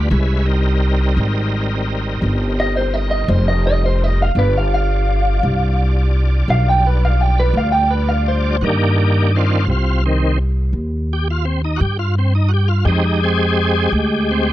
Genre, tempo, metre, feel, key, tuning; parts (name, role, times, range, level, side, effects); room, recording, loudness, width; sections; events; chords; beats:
slow blues; 56 BPM (dotted quarters); 12/8; straight; C minor; A4 = 440 Hz
bright tonewheel organ; sustained chords; 0.0-14.5 s; Eb3 to D5; -21 LUFS; equal; slow rotary speaker, overdrive, chorus vibrato
upright bass; bass; 0.0-14.5 s; F1 to G2; -16 LUFS; equal
electric guitar through a small old amp; melody; 2.6-8.6 s; B4 to G5; -19 LUFS; right 1 dB
studio ambience; dry, close 1970s-style studio recording; -14 LUFS; side -14 dB against mid
0.0-8.6 A section; 8.6-14.5 A section
clean electric guitar solo 0.0-8.6; tonewheel organ solo 8.6-14.5
0.1 Cm7; 4.4 G7; 8.6 Cm7; 12.9 Fm7
| 0.12 1.18 2.24 3.31 | 4.37 5.43 6.49 7.55 | 8.62 9.68 10.74 11.81 | 12.87 13.93